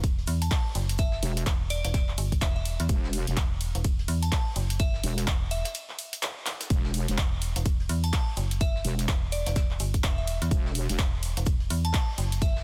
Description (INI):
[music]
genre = bass house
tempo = 126 BPM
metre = 4/4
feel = swing 60% on 16ths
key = E minor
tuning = A4 = 440 Hz
[part]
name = metallic FM bass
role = bass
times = 0.0-12.6 s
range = E1 to E2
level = -31 LUFS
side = equal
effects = overdrive, sidechain pumping
[part]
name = big-room dance drum kit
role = drums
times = 0.0-12.5 s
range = handclaps, hi-hat, ride cymbal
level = -36 LUFS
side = equal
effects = none
[part]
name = electronic kick drum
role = drums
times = 0.0-12.5 s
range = none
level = -29 LUFS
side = equal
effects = none
[part]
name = vintage brush drum kit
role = drums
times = 0.0-12.6 s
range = hi-hat, shaker, snare drum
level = -47 LUFS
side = equal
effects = none
[part]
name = glassy synth bell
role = melody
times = 0.4-12.6 s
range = D5 to A5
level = -39 LUFS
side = equal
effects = chorus, phaser, digital delay
[part]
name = wobble bass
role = bass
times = 1.2-11.0 s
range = E1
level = -30 LUFS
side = equal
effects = chorus, overdrive, sidechain pumping
[sound]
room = little or no reverb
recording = dense, heavily limited modern master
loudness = -28 LUFS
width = mono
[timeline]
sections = 0.0-12.6 A section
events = break 5.8-6.7; drum fill 6.5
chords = none